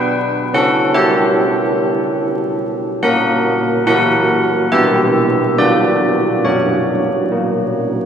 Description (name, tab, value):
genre	classical, tune for church bells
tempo	71 BPM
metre	4/4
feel	straight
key	unclear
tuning	A4 = 440 Hz
part	old church bells	solo	0.0-8.1 s	F#3 to G5	-13 LUFS	equal	none
room	wet cathedral reverb, RT60 4.4 s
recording	minimal, uncompressed stereo recording, vinyl crackle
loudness	-13 LUFS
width	side -8 dB against mid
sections	0.0-8.1 A section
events	none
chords	0.0 C#m7b5/B; 3.1 F#7/A#; 4.7 Bm; 6.5 F#